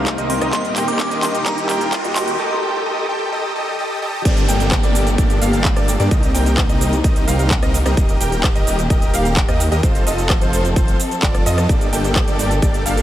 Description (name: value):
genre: EDM, festival progressive house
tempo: 129 BPM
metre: 4/4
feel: straight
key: G minor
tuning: A4 = 443 Hz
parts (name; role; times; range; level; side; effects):
- felt-muted upright piano; accompaniment; 0.0-2.4 s; C3 to Bb4; -30 LUFS; left 3 dB; sidechain pumping, diffuse ambient delay
- dark studio string section; sustained chords; 0.0-13.0 s; C3 to A4; -27 LUFS; left 1 dB; sidechain pumping
- clear baby grand piano; arpeggios; 0.0-13.0 s; C5 to G5; -28 LUFS; equal; analog chorus, sidechain pumping, low-pass filter, diffuse ambient delay
- dense compressed supersaw; riff; 0.0-13.0 s; Bb3 to G5; -22 LUFS; right 1 dB; sidechain pumping, low-pass filter, diffuse ambient delay
- detuned saw bass; bass; 0.0-13.0 s; Eb1 to G2; -21 LUFS; equal; sidechain pumping
- riser, swell and downlifter; sound effects; 0.0-8.0 s; none; -27 LUFS; equal; none
- big-room dance drum kit; drums; 0.1-13.0 s; cabasa, crash cymbal, handclaps, hi-hat, rim click; -24 LUFS; equal; high-pass filter on hats, high-pass filter on toms, high-pass filter on snare, high-pass filter on cymbals, high-pass filter on perc
- electronic kick drum; drums; 0.1-12.7 s; none; -17 LUFS; equal; high-pass filter on kick
- glassy synth bell; melody; 0.3-2.3 s; Bb5 to D6; -26 LUFS; equal; chorus, diffuse ambient delay
room: moderate huge ambient reverb, RT60 8.5 s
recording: dreamy mix soaked in reverb, high-pass filter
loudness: -15 LUFS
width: side -12 dB against mid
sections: 0.0-4.3 A section; 4.3-13.0 B section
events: build-up 0.0-4.3; drum fill 0.0-2.4; riser 0.0-2.4; filter sweep on supersaw synth 0.0-4.3; break 2.4-4.3; swell 3.3-4.3; drop 4.3-13.0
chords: 0.0 Cm7; 0.5 Eb; 2.4 Gsus2; 4.3 Gmadd9; 6.1 Cm7; 8.0 Eb; 9.8 F; 11.7 Gmadd9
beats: 0.07 | 0.53 1.00 1.46 1.93 | 2.39 2.86 3.32 3.79 | 4.25 4.72 5.18 5.65 | 6.11 6.58 7.04 7.51 | 7.97 8.44 8.90 9.37 | 9.83 10.30 10.76 11.23 | 11.69 12.16 12.62